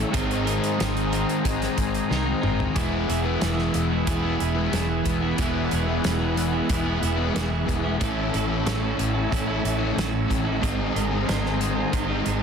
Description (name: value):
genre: rock, shoegaze and dream pop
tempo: 92 BPM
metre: 4/4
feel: straight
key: unclear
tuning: A4 = 440 Hz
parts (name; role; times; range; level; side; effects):
- sweeping resonant pad; sustained chords; 0.0-12.4 s; B4 to F#6; -34 LUFS; right 1 dB; chorus
- overdriven electric guitar; riff; 0.0-12.4 s; G#2 to E4; -28 LUFS; left 1 dB; none
- overdriven semi-hollow guitar; riff; 0.0-12.3 s; G#2 to E4; -28 LUFS; left 9 dB; lush chorus
- semi-hollow electric guitar; riff; 0.0-12.4 s; E2 to A#4; -29 LUFS; right 10 dB; reverse reverb
- vintage muted fingered electric bass; bass; 0.0-12.4 s; E1 to B#1; -28 LUFS; equal; none
- loose indie drum kit; drums; 0.1-12.4 s; hi-hat, kick drum, snare drum, toms; -29 LUFS; equal; none
room: light reverb, small room ambience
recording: dense, heavily limited modern master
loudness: -22 LUFS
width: side -6 dB against mid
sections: 0.0-2.8 A section; 2.8-12.4 B section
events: drum fill 2.1-2.8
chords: 0.1 G#add9; 2.8 E; 8.0 A; 10.6 G#add9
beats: | 0.14 0.79 1.45 2.10 | 2.76 3.42 4.07 4.73 | 5.38 6.04 6.70 7.35 | 8.01 8.66 9.32 9.97 | 10.63 11.28 11.93